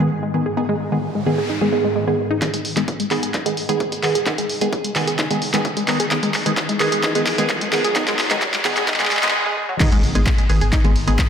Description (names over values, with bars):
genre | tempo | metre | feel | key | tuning
driving peak-time techno | 130 BPM | 4/4 | straight | G# minor | A4 = 441 Hz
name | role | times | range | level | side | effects
tight sequenced synth | riff | 0.0-11.1 s | F#3 to G#4 | -24 LUFS | left 1 dB | chorus, tube saturation, sidechain pumping, tape echo
filtered dub chord stab | stabs | 0.0-11.2 s | D#3 to G#4 | -22 LUFS | right 1 dB | phaser, sidechain pumping, analog delay
swarming drone | drone | 0.0-2.5, 11.0-11.3 s | G#2 to D#3 | -31 LUFS | equal | built-in reverb, sidechain pumping
noise sweep, riser and impact | sound effects | 0.8-11.3 s | none | -30 LUFS | equal | none
electronic kick drum | drums | 2.4-11.3 s | none | -22 LUFS | equal | high-pass filter on kick, high-pass filter on room
punchy analog drum machine | drums | 2.4-11.3 s | crash cymbal, handclaps, hi-hat, ride cymbal | -22 LUFS | equal | high-pass filter on snare, high-pass filter on hats, high-pass filter on cymbals, high-pass filter on room
warm sub bass | bass | 9.9-11.2 s | G#1 | -20 LUFS | equal | overdrive, sidechain pumping, low-pass filter
room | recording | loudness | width
wet lush hall reverb, RT60 1.8 s | dreamy mix soaked in reverb, high-pass filter | -17 LUFS | side -8 dB against mid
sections
0.0-2.4 A section; 2.4-9.8 B section; 9.8-11.3 C section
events
filter sweep on synth arpeggio sound 0.0-2.4, 2.4-9.8; noise sweep 0.8-2.4; build-up 2.4-9.8; drum fill 2.4-9.3; filter sweep 2.4-9.8; riser 4.4-9.3; break 9.3-9.8; drop 9.8-11.3; impact 9.8-11.3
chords
0.0 G#m